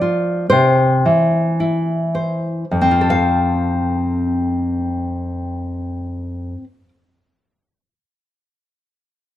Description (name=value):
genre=folk, solo fingerstyle acoustic guitar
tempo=53 BPM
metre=4/4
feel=straight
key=F major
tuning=A4 = 441 Hz
part: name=nylon-string guitar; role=solo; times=0.0-6.9 s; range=F2 to F5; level=-16 LUFS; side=left 1 dB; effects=none
room=light reverb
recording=lossy compression artefacts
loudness=-16 LUFS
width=side -12 dB against mid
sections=0.0-2.7 A section; 2.7-7.2 B section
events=slowing down 0.0-2.7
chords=0.0 N.C.; 0.5 C; 2.7 F